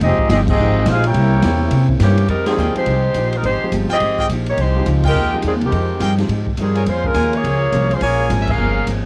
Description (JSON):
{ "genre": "jazz, big band swing", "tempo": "210 BPM", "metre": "4/4", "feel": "swing 62% on 8ths", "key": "F minor", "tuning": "A4 = 440 Hz", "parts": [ { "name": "mellow trumpet section", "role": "melody", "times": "0.0-1.9 s", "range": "C4 to G5", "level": "-21 LUFS", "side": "equal", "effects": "cassette tape" }, { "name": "clear trombone section", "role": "second line", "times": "0.0-1.9 s", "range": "Ab3 to G4", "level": "-28 LUFS", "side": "equal", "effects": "none" }, { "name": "vintage hollow-body jazz guitar", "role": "accompaniment", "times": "0.0-9.1 s", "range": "Bb2 to G4", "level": "-30 LUFS", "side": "equal", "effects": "none" }, { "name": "mellow trombone section", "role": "sustained chords", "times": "0.0-2.3 s", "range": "Db3 to F4", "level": "-30 LUFS", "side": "equal", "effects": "none" }, { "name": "upright bass", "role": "bass", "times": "0.0-9.1 s", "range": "F1 to C3", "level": "-20 LUFS", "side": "equal", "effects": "none" }, { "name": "open jazz drum kit", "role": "drums", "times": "0.0-9.0 s", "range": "crash cymbal, hi-hat, kick drum, ride cymbal, snare drum", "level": "-28 LUFS", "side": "equal", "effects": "none" }, { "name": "mellow saxophone section", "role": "melody", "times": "2.0-8.9 s", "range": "Eb3 to F5", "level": "-22 LUFS", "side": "equal", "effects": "cassette tape" }, { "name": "warm concert grand piano", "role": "accompaniment", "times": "2.5-8.5 s", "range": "F3 to Ab4", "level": "-28 LUFS", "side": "equal", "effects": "cassette tape" }, { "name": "clear trumpet section", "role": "stabs", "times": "2.6-8.8 s", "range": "F4 to Ab5", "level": "-25 LUFS", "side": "equal", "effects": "cassette tape" } ], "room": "little or no reverb", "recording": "home recording on cassette", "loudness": "-17 LUFS", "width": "mono", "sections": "0.0-2.3 A section; 2.3-9.1 B section", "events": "band accent 0.4, 2.4, 5.0, 8.4", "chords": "0.0 Fm9; 1.2 C7b9; 2.3 Fm9; 6.9 Bbm7" }